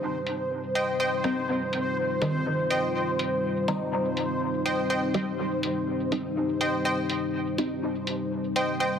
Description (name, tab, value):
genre	dub techno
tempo	123 BPM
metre	4/4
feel	swing 56% on 16ths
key	C minor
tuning	A4 = 437 Hz
part	deep dark ambient pad	sustained chords	0.0-9.0 s	G3 to Bb4	-30 LUFS	equal	chorus, built-in reverb
part	filtered dub chord stab	stabs	0.0-7.9 s	Eb3 to Eb4	-31 LUFS	equal	phaser, dub echo
part	bubbling stepped-filter texture	texture	0.0-9.0 s	C5	-31 LUFS	left 2 dB	chorus, built-in reverb
part	electronic hi-hat	drums	0.3-8.7 s	none	-34 LUFS	equal	low-pass filter on hats, low-pass filter on room
part	wavetable chord stab	riff	0.8-8.9 s	C5 to G5	-30 LUFS	equal	dub echo
room	wet echo chamber reverb, RT60 1.5 s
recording	dense, heavily limited modern master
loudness	-25 LUFS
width	side -8 dB against mid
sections	0.0-9.0 A section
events	filter sweep on ambient pad 0.0-9.0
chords	0.0 Cm